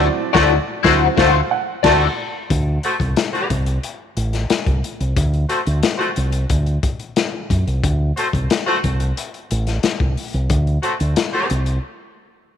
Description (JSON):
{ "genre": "funk", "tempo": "90 BPM", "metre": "4/4", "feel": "straight", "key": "D mixolydian", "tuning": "A4 = 440 Hz", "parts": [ { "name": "electric guitar at the edge of break-up", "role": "accompaniment", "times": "0.0-2.1 s", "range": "E4 to D5", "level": "-19 LUFS", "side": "left 10 dB", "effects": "wah, tremolo" }, { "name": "warm upright piano", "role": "stabs", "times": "0.0-2.5 s", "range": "F#3 to A5", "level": "-22 LUFS", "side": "right 11 dB", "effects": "none" }, { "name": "fingered electric bass with an envelope filter", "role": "bass", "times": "0.0-11.8 s", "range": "A1 to F#2", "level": "-18 LUFS", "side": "equal", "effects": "none" }, { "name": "warm horn section", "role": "second line", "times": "0.3-11.5 s", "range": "A3 to C5", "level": "-21 LUFS", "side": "left 1 dB", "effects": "none" }, { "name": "crunchy breakbeat drum kit", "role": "drums", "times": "0.3-11.8 s", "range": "crash cymbal, hi-hat, kick drum, snare drum", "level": "-21 LUFS", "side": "left 4 dB", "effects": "none" } ], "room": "light reverb, studio reverb", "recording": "1960s-style stereo with parts hard left and right", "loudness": "-16 LUFS", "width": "side -8 dB against mid", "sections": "0.0-2.5 A section; 2.5-12.6 B section", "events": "band accent 0.0-2.5; upright piano solo 0.0-2.5; break 11.8-12.6", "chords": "0.0 D9; 2.5 D7(no3)", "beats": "0.51 1.18 1.84 | 2.50 3.17 3.83 4.50 | 5.17 5.83 6.50 7.17 | 7.83 8.50 9.17 9.83 | 10.50 11.17" }